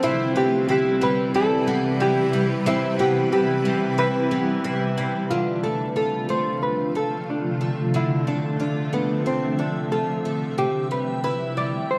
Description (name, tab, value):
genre	dream pop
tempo	91 BPM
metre	4/4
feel	straight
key	unclear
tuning	A4 = 439 Hz
part	hollow-body jazz guitar	melody	0.0-12.0 s	B3 to D5	-26 LUFS	equal	analog delay
part	clean electric guitar	accompaniment	0.0-5.3 s	C3 to B4	-33 LUFS	equal	tremolo, subtle chorus
part	granular cloud pad	sustained chords	0.0-12.0 s	C3 to E5	-29 LUFS	equal	built-in reverb
part	picked twelve-string acoustic guitar	arpeggios	0.0-12.0 s	C3 to F4	-28 LUFS	equal	analog chorus, analog delay
part	drifting glass-harmonics texture	texture	0.0-5.6 s	C4 to E5	-41 LUFS	equal	none
room	wet echo chamber reverb, RT60 1.7 s, digital ambience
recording	dark, warm production, vinyl crackle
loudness	-23 LUFS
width	mono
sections	0.0-5.3 A section; 5.3-12.0 B section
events	none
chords	0.0 Cmaj7; 5.3 Dm7; 10.6 Cmaj7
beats	| 0.03 0.69 1.35 2.01 | 2.67 3.33 3.98 4.64 | 5.30 5.96 6.62 7.28 | 7.94 8.60 9.26 9.92 | 10.58 11.24 11.90